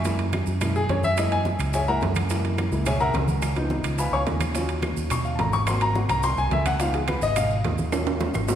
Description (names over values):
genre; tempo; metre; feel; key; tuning
Afro-Cuban jazz; 213 BPM; 4/4; straight; unclear; A4 = 441 Hz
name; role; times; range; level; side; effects
warm baby grand piano; accompaniment; 0.0-8.6 s; F3 to Db6; -25 LUFS; left 2 dB; none
fingered electric bass; bass; 0.0-8.6 s; Ab1 to Gb2; -26 LUFS; right 1 dB; none
congas; percussion; 0.0-8.4 s; none; -32 LUFS; right 1 dB; none
maracas; percussion; 0.0-8.6 s; none; -40 LUFS; right 7 dB; none
bongos; percussion; 0.1-8.6 s; none; -34 LUFS; left 2 dB; none
timbales; percussion; 0.1-8.6 s; none; -32 LUFS; right 6 dB; none
claves; percussion; 0.3-8.5 s; none; -39 LUFS; right 1 dB; none
room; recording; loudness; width
wet concert hall reverb, RT60 2.2 s; recorded in a church or concert hall; -21 LUFS; side -10 dB against mid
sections
0.0-8.6 A section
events
grand piano solo 0.0-8.6; drum fill 7.9-8.6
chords
0.1 Gb9; 3.4 Db9; 4.6 Ebm7; 5.7 Ab9; 6.8 Db9; 7.9 Ebm7